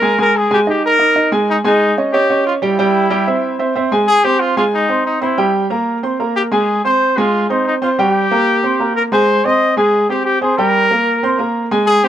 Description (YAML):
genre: latin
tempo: 185 BPM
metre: 4/4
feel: straight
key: unclear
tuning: A4 = 440 Hz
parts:
  - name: warm trumpet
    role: melody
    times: 0.0-12.1 s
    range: Eb4 to Eb5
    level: -15 LUFS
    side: left 1 dB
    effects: none
  - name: clear baby grand piano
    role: accompaniment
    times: 0.0-12.1 s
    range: G3 to C6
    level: -15 LUFS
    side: right 2 dB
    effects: slapback echo
room: little or no reverb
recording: recorded outdoors, with no room sound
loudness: -12 LUFS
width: side -10 dB against mid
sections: 0.0-4.1 A section; 4.1-12.1 B section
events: none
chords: 0.2 Absus2; 1.5 Dbsus2; 2.8 C; 4.1 Ab; 5.4 C5; 6.7 Fm; 8.0 C5; 9.3 Abmaj7; 10.6 C5